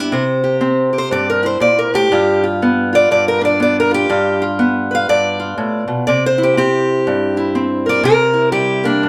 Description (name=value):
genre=acoustic country blues, solo or duo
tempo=121 BPM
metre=4/4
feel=swing 61% on 8ths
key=unclear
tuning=A4 = 441 Hz
part: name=fingerpicked steel-string acoustic guitar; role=solo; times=0.0-9.1 s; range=G2 to F5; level=-15 LUFS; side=equal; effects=none
room=wet studio reverb, RT60 0.7 s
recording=heard from further back in the room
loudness=-15 LUFS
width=mono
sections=0.0-9.1 A section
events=steel-string acoustic guitar solo 0.0-9.1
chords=0.1 C7; 2.1 G7; 6.1 C7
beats=| 0.12 0.61 1.11 1.61 | 2.10 2.60 3.10 3.59 | 4.09 4.58 5.08 5.57 | 6.07 6.56 7.06 7.55 | 8.04 8.54 9.03